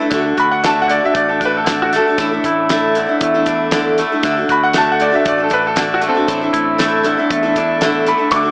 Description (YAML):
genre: folk rock and heartland rock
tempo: 117 BPM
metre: 4/4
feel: straight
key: D mixolydian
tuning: A4 = 440 Hz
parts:
  - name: picked steel-string acoustic guitar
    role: accompaniment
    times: 0.0-8.5 s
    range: A2 to A4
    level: -20 LUFS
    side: equal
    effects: none
  - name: tonewheel organ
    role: sustained chords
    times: 0.0-8.5 s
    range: A4 to D6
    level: -30 LUFS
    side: equal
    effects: none
  - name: electric guitar through a small old amp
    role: riff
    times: 0.0-8.5 s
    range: A2 to F#4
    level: -20 LUFS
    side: equal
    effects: none
  - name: fingered electric bass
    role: bass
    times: 0.1-8.5 s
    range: A1 to E2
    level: -30 LUFS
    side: equal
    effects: none
  - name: damped 70s drum kit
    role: drums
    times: 0.1-8.4 s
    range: hi-hat, kick drum, snare drum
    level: -24 LUFS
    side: equal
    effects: none
  - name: bright upright piano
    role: second line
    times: 0.4-8.5 s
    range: C4 to D6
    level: -20 LUFS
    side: equal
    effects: none
room: light reverb, studio reverb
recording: small speaker sound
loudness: -15 LUFS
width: mono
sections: 0.0-8.5 A section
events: upright piano solo 0.0-8.5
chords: 0.1 D; 2.2 Asus4; 4.2 D; 6.3 Asus4